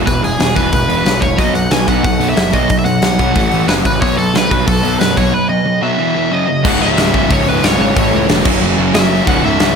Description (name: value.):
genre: punk rock.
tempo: 182 BPM.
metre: 4/4.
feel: straight.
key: unclear.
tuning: A4 = 438 Hz.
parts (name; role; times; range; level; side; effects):
sludgy distorted guitar; riff; 0.0-9.7 s; C#2 to B3; -18 LUFS; left 11 dB; overdrive, slapback echo.
sludgy distorted guitar; riff; 0.0-9.8 s; C#2 to B3; -18 LUFS; right 10 dB; overdrive, slapback echo.
fuzz picked electric bass; bass; 0.0-9.7 s; C#1 to F#2; -20 LUFS; equal; overdrive.
biting overdriven guitar; melody; 0.1-9.8 s; G#4 to G#5; -17 LUFS; equal; slapback echo, tape echo.
big rock drum kit; drums; 0.1-9.7 s; crash cymbal, hi-hat, kick drum, snare drum; -16 LUFS; equal; none.
distorted electric guitar; riff; 6.6-9.8 s; C#2 to A3; -20 LUFS; left 1 dB; overdrive, slapback echo.
room: moderate lush hall reverb, RT60 1.6 s, small room ambience.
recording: big arena sound.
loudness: -11 LUFS.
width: side -6 dB against mid.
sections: 0.0-6.6 A section; 6.6-9.8 B section.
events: none.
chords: 0.0 E; 1.4 B5; 3.4 A5; 3.7 F#5; 4.0 B5; 6.0 E5; 6.3 F#5; 6.6 C#m; 8.0 A; 8.4 F#5.